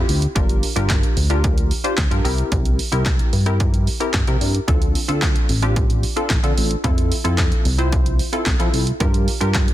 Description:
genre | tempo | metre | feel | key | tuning
dance-pop | 111 BPM | 4/4 | straight | F major | A4 = 436 Hz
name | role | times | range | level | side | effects
funky polysynth comp | accompaniment | 0.0-9.7 s | C4 to C5 | -24 LUFS | left 1 dB | chorus, sidechain pumping
chorused synth bass | bass | 0.0-9.7 s | G1 to F3 | -20 LUFS | equal | sidechain pumping
punchy analog drum machine | drums | 0.1-9.7 s | handclaps, hi-hat, kick drum, snare drum | -19 LUFS | equal | none
room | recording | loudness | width
digital ambience | dense, heavily limited modern master | -16 LUFS | side -14 dB against mid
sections
0.0-9.7 A section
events
none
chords
0.4 Gm7; 2.2 C7; 4.7 Dm7; 6.8 Fmaj7; 9.0 Gm7

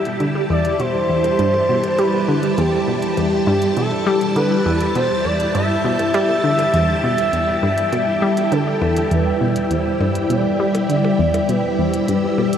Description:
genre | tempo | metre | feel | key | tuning
ambient, sequencer-driven space music | 101 BPM | 4/4 | straight | E minor | A4 = 440 Hz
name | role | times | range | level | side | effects
expressive portamento lead | melody | 0.0-12.6 s | G4 to E5 | -20 LUFS | equal | lush chorus, tape echo
string machine, full ensemble | sustained chords | 0.0-12.6 s | G3 to A5 | -20 LUFS | equal | phaser, ensemble chorus
analog pluck | riff | 0.0-12.5 s | E2 to G3 | -20 LUFS | equal | chorus, tape echo
electronic hi-hat and percussion blips | percussion | 0.1-12.6 s | none | -33 LUFS | left 3 dB | tape echo
room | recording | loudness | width
wet huge ambient reverb, RT60 8.0 s | none | -16 LUFS | side -9 dB against mid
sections
0.0-12.6 A section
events
fade-in on drum 0.0-12.6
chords
0.0 Em

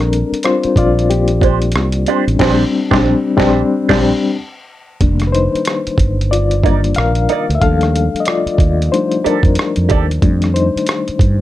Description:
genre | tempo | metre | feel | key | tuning
R&B, neo-soul | 92 BPM | 4/4 | swing 58% on 16ths | unclear | A4 = 441 Hz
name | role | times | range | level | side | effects
bright reed electric piano | accompaniment | 0.0-11.4 s | Eb3 to F5 | -15 LUFS | left 4 dB | fast tremolo
mellow fretless electric bass | bass | 0.0-11.4 s | F1 to G2 | -16 LUFS | right 1 dB | none
dusty soul sampler-style drum kit | drums | 0.0-11.4 s | crash cymbal, hi-hat, kick drum, rim click, snare drum | -17 LUFS | right 1 dB | none
vintage hollow-body jazz guitar | second line | 1.4-10.1 s | D4 to D5 | -18 LUFS | right 11 dB | wah
room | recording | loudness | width
light reverb | none | -12 LUFS | side -14 dB against mid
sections
0.0-5.0 A section; 5.0-11.4 B section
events
reed electric piano solo 0.0-5.0, 5.0-11.4; band accent 2.4-5.0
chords
0.0 Bb69; 4.4 N.C.; 5.0 F13sus4; 7.6 Ebmaj9#11; 10.2 F13

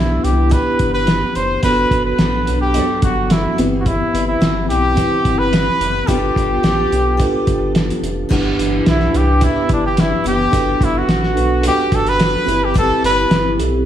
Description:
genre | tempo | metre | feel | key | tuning
indie pop, bedroom pop | 108 BPM | 4/4 | straight | unclear | A4 = 440 Hz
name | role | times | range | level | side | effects
warm trumpet | melody | 0.0-13.6 s | D4 to C5 | -18 LUFS | equal | analog chorus, tape echo
mellow tine electric piano | accompaniment | 0.0-13.9 s | B3 to B4 | -22 LUFS | right 4 dB | medium stereo tremolo, cassette tape
picked steel-string acoustic guitar | accompaniment | 0.0-13.9 s | G2 to B4 | -22 LUFS | left 4 dB | ensemble chorus, warbly pitch drift
round analog bass | bass | 0.0-13.9 s | F1 to C2 | -20 LUFS | equal | none
cloth-damped thuddy drum kit | drums | 0.2-13.7 s | crash cymbal, hi-hat, kick drum, snare drum | -19 LUFS | equal | none
room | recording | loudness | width
light reverb, small room reverb | studio reverb | -13 LUFS | side -10 dB against mid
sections
0.0-8.3 A section; 8.3-13.9 B section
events
trumpet solo 8.3-13.9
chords
0.0 Cmaj9; 1.6 Gmaj7; 3.6 Cmaj7; 6.1 G9; 8.3 Cmaj9/G; 10.5 Gmaj7; 12.5 Am9/G

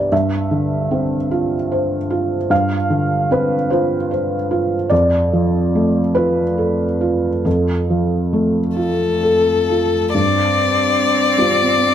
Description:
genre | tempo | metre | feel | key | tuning
neoclassical piano and strings | 43-51 BPM (dotted quarters) | 6/8 | rubato | unclear | A4 = 441 Hz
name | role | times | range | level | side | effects
felt-muted upright piano | accompaniment | 0.0-11.9 s | F2 to F5 | -16 LUFS | right 1 dB | none
clear violin | melody | 8.8-11.9 s | A4 to D5 | -16 LUFS | left 6 dB | slapback echo
rich cello | second line | 10.1-11.9 s | C4 | -21 LUFS | right 3 dB | none
room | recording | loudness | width
light reverb | close, detailed microphones | -15 LUFS | side -10 dB against mid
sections
0.0-10.1 A section; 10.1-11.9 B section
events
none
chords
0.1 G7sus4; 4.9 Dm/F; 10.1 G7sus4

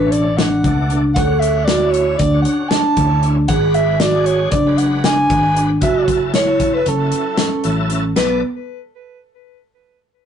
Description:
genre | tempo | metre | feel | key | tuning
progressive instrumental, band music in an uneven meter | 231 BPM (eighths) | 9/8 | straight | B dorian | A4 = 440 Hz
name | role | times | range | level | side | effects
warm soprano saxophone | melody | 0.0-8.4 s | A4 to A5 | -20 LUFS | right 1 dB | ping-pong delay
bright tonewheel organ | accompaniment | 0.0-8.4 s | B2 to D5 | -27 LUFS | left 1 dB | chorus vibrato, fast rotary speaker
vibraphone with soft mallets | arpeggios | 0.0-8.4 s | B3 to A4 | -18 LUFS | right 1 dB | none
fretless electric bass | bass | 0.0-8.4 s | F#1 to D2 | -19 LUFS | equal | none
natural country drum kit | drums | 0.1-8.3 s | hi-hat, kick drum, snare drum, splash cymbal | -20 LUFS | left 2 dB | none
room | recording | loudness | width
moderate studio reverb, RT60 0.5 s | rough rehearsal-room recording, nothing above 10.4 kHz | -13 LUFS | side -8 dB against mid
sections
0.0-8.2 A section; 8.2-10.3 B section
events
none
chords
0.0 Bm7; 1.2 Dmaj7; 3.5 G#m7b5; 5.8 F#m7; 8.2 Bm7

